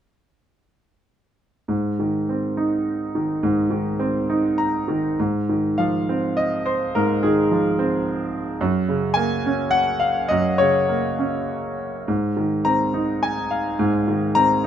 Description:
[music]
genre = classical, lyrical solo piano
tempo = 98-110 BPM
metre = 3/4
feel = rubato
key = unclear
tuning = A4 = 440 Hz
[part]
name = bright concert grand piano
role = solo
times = 1.7-14.7 s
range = Gb2 to Bb5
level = -19 LUFS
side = equal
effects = none
[sound]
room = light reverb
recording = dark, warm production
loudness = -19 LUFS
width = side -9 dB against mid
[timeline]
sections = 1.7-5.2 A section; 5.2-14.7 B section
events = grand piano fill 4.3-5.2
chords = 1.7 Ab; 5.2 Ab6; 8.6 Gb; 12.1 Ab

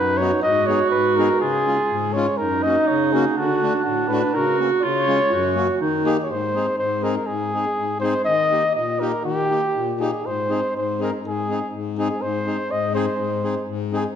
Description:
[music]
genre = alpine folk, alpine dance band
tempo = 122 BPM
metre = 2/4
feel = straight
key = F# major, Ab major from 6.3 s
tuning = A4 = 440 Hz
[part]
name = mellow flugelhorn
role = melody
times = 0.0-14.1 s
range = F#4 to D#5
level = -22 LUFS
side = equal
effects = none
[part]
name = warm clarinet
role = second line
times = 0.0-6.3 s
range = D4 to F#4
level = -22 LUFS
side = right 5 dB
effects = none
[part]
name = accordion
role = accompaniment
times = 0.0-14.1 s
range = F#2 to G#4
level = -24 LUFS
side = left 4 dB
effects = none
[sound]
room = wet recital hall reverb, RT60 1.5 s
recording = dark, warm production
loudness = -19 LUFS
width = side -8 dB against mid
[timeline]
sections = 0.0-6.3 A section; 6.3-14.2 B section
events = none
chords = 0.4 G#m; 1.4 C#; 2.4 F#; 3.4 D; 4.3 F#/C#; 4.8 C#; 5.3 F#; 5.8 D#; 6.3 Ab; 8.3 Eb; 10.2 Ab

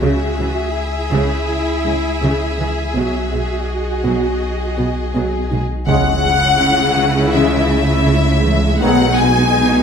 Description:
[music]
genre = cinematic, hybrid orchestral and electronic film score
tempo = 82 BPM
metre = 4/4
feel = straight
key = C# minor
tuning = A4 = 441 Hz
[part]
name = warm symphonic violin section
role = second line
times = 0.0-9.8 s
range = G#4 to G#5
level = -21 LUFS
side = left 4 dB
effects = none
[part]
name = warm studio viola section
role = accompaniment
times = 0.0-9.8 s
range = C#3 to F#4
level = -22 LUFS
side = right 2 dB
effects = low-pass filter
[part]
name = warbly dusty pluck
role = arpeggios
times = 0.0-9.8 s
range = C#3 to G#4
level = -24 LUFS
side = right 3 dB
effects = chorus, low-pass filter
[part]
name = clear symphonic double bass section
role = bass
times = 0.0-9.8 s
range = B1 to C#2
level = -23 LUFS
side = right 3 dB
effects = none
[part]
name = saturated sub bass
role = bass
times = 0.0-9.8 s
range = B1 to C#2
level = -23 LUFS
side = equal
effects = none
[part]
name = warm symphonic cello section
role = bass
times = 0.0-9.8 s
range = B2 to C#3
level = -20 LUFS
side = right 1 dB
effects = none
[part]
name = rich symphonic violin section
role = melody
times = 5.9-9.8 s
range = E5 to G#5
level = -20 LUFS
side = left 5 dB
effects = low-pass filter
[part]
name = mellow French horn section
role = sustained chords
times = 5.9-9.1 s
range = B3 to G#4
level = -22 LUFS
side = left 6 dB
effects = low-pass filter
[part]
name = warm trombone section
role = sustained chords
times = 5.9-9.1 s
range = C#3 to G#3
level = -25 LUFS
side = right 2 dB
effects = low-pass filter
[part]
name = impact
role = sound effects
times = 5.9-8.8 s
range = none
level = -26 LUFS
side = equal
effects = none
[sound]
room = moderate scoring stage reverb, RT60 1.6 s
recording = none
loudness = -14 LUFS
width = side -7 dB against mid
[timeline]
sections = 0.0-5.9 A section; 5.9-9.8 B section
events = impact 5.9-8.8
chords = 0.0 C#m; 3.0 B6; 5.9 C#m; 8.8 B6

